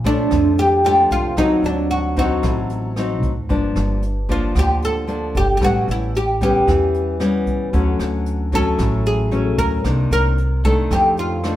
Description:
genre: bossa nova.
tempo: 113 BPM.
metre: 4/4.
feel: straight.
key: unclear.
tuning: A4 = 440 Hz.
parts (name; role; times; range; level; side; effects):
nylon-string guitar; accompaniment; 0.0-11.6 s; F2 to Eb4; -22 LUFS; left 2 dB; none.
upright bass; bass; 0.0-11.6 s; G1 to F2; -22 LUFS; equal; none.
jazz brush drum kit; drums; 0.0-11.6 s; hi-hat, kick drum, rim click; -24 LUFS; right 1 dB; none.
oud; melody; 0.1-11.6 s; D4 to Bb4; -18 LUFS; equal; none.
room: moderate studio reverb, RT60 0.9 s.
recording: band playing live in one room.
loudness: -16 LUFS.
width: side -13 dB against mid.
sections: 0.0-11.6 A section.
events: none.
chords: 0.0 Bbmaj7; 1.4 D7b9; 3.5 Gm7; 5.6 A9; 7.7 Dmaj7; 9.8 Cm9; 10.9 F6.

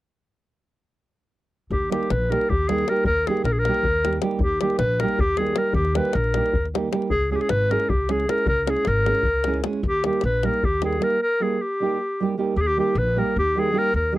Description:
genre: balkan folk, Balkan wedding band.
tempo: 309 BPM (eighths).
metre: 7/8.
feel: straight.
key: Eb phrygian dominant.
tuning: A4 = 440 Hz.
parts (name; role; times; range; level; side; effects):
warm clarinet; melody; 1.7-14.2 s; G4 to Cb5; -22 LUFS; left 1 dB; none.
upright bass; bass; 1.7-14.2 s; Ab1 to Eb2; -26 LUFS; equal; none.
davul; percussion; 1.7-11.2 s; none; -27 LUFS; left 2 dB; none.
nylon-string guitar; accompaniment; 1.9-14.2 s; G3 to Ab4; -25 LUFS; right 4 dB; none.
room: little or no reverb.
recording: dry, close 1970s-style studio recording.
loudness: -20 LUFS.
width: side -16 dB against mid.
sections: 1.7-12.6 A section; 12.6-14.2 A section.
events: none.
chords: 1.7 Eb; 7.1 Dbm; 9.8 Eb.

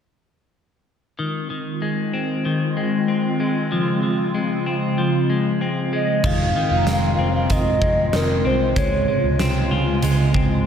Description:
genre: dream pop.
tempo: 95 BPM.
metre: 4/4.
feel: straight.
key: F minor.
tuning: A4 = 440 Hz.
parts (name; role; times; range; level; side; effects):
hollow soft pad; sustained chords; 1.2-10.7 s; C3 to F4; -22 LUFS; equal; ensemble chorus.
clean electric guitar; arpeggios; 1.2-10.7 s; Eb3 to F4; -24 LUFS; left 3 dB; wide subtle chorus, tape echo, slapback echo.
hollow clarinet-like synth lead; melody; 5.9-9.4 s; Bb4 to F5; -22 LUFS; right 1 dB; chorus, phaser, tape echo, slapback echo.
vintage muted picked electric bass; bass; 6.2-10.6 s; F1 to Db2; -23 LUFS; right 1 dB; none.
huge arena drum kit; drums; 6.2-10.5 s; crash cymbal, hi-hat, kick drum, snare drum; -24 LUFS; right 1 dB; none.
vibraphone with medium mallets; texture; 6.6-10.7 s; G5 to C6; -34 LUFS; right 3 dB; tape echo.
room: wet scoring stage reverb, RT60 1.6 s, small room ambience.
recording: big arena sound.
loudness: -18 LUFS.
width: side -8 dB against mid.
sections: 1.2-6.2 A section; 6.2-10.7 B section.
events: none.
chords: 1.2 Fm7; 3.7 Dbmaj7; 6.2 Fm7; 8.8 Dbmaj7.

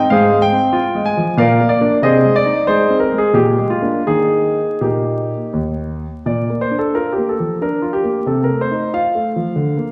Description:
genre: classical, baroque-style suite movement for grand piano.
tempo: 81-96 BPM.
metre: 3/4.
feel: rubato.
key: Eb major, Bb major from 6.3 s.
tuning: A4 = 440 Hz.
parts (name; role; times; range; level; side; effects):
warm grand piano; solo; 0.0-9.9 s; Eb2 to Ab5; -16 LUFS; equal; none.
room: wet recital hall reverb, RT60 1.6 s.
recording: heard from further back in the room, vinyl crackle.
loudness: -16 LUFS.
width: mono.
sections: 0.0-6.3 A section; 6.3-9.9 A section.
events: none.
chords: 0.1 Fm/Ab; 1.4 Bb; 2.0 Ab/C; 3.4 Bb7; 4.1 Eb; 6.3 Bb; 8.2 F7/C.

